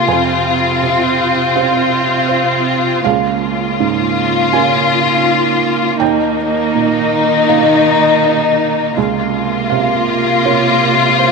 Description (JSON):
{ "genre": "neoclassical piano and strings", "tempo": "81 BPM", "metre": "4/4", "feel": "rubato", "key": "F minor", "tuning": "A4 = 440 Hz", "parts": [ { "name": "rich symphonic violin section", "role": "melody", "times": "0.0-11.3 s", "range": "Eb4 to F4", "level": "-14 LUFS", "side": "left 7 dB", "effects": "slapback echo" }, { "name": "rich cello", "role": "second line", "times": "0.0-11.3 s", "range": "C3 to Eb3", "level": "-22 LUFS", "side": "right 8 dB", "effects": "none" }, { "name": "clear viola", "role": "accompaniment", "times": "0.0-11.3 s", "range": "Bb3 to C4", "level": "-20 LUFS", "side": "right 12 dB", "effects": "none" }, { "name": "felt-muted upright piano", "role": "accompaniment", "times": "0.0-11.3 s", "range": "Db2 to Ab5", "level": "-18 LUFS", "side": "right 11 dB", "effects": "none" } ], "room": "moderate plate reverb, RT60 2.4 s", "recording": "1960s-style stereo with parts hard left and right", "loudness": "-11 LUFS", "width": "side -4 dB against mid", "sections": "0.0-11.3 A section", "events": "none", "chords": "0.1 Fm; 3.0 Db6; 6.0 Eb; 9.0 Bbmadd9/Db" }